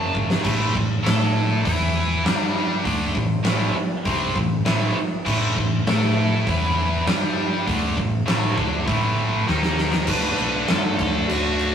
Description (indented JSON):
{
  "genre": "hard rock",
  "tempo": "100 BPM",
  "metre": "4/4",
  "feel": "straight",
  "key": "unclear",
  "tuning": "A4 = 440 Hz",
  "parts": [
    { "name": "high-gain lead guitar", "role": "melody", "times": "0.0-0.1, 10.1-11.7 s", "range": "F#4 to A5", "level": "-27 LUFS", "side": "left 1 dB", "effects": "distortion" },
    { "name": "tight distorted guitar", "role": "riff", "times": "0.0-11.7 s", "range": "F#2 to A4", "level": "-23 LUFS", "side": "equal", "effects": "distortion" },
    { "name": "hollow-body short-scale fingered electric bass", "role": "bass", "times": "0.0-11.7 s", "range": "G#1 to A2", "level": "-25 LUFS", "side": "equal", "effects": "none" },
    { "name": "huge arena drum kit", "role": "drums", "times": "0.1-11.7 s", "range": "crash cymbal, hi-hat, kick drum, snare drum", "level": "-23 LUFS", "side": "equal", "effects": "none" }
  ],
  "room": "light reverb",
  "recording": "rough rehearsal-room recording, tube saturation, small room ambience",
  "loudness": "-19 LUFS",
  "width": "side -8 dB against mid",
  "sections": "0.4-10.1 A section; 10.1-11.7 B section",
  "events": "drum fill 0.0-0.4, 9.5-10.1",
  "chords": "0.4 A5; 1.7 E5; 2.3 G5; 2.9 A5; 6.5 E5; 7.1 G5; 7.7 A5; 9.5 D#5; 10.1 D"
}